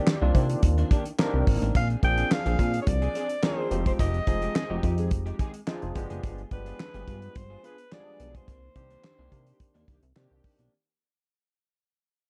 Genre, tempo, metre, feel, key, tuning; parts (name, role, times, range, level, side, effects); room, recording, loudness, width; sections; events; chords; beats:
early-eighties boogie funk; 107 BPM; 4/4; straight; C minor; A4 = 440 Hz
breathy alto saxophone; melody; 0.0-10.2 s; B4 to G5; -35 LUFS; equal
barky tine electric piano; accompaniment; 0.0-10.7 s; D3 to Bb4; -36 LUFS; equal
electric guitar at the edge of break-up; riff; 0.0-10.7 s; Eb3 to Ab4; -41 LUFS; equal; ensemble chorus
mellow synth brass; second line; 0.1-10.6 s; Eb3 to Ab4; -40 LUFS; equal; chorus, phaser
damped 70s drum kit; drums; 0.1-10.7 s; handclaps, hi-hat, kick drum, snare drum; -28 LUFS; equal
chorused synth bass; bass; 0.2-10.7 s; F1 to C3; -30 LUFS; equal
light reverb, small room ambience; dark, warm production; -26 LUFS; mono
0.0-10.7 A section
fade-out 0.0-10.7
0.0 Cm9; 1.8 Bb9; 3.7 Fm9; 6.0 G7b9; 8.5 Cm9
0.07 0.63 1.19 | 1.75 2.31 2.87 3.43 | 3.99 4.55 5.12 5.67 | 6.24 6.80 7.36 7.92 | 8.48 9.04 9.60 10.16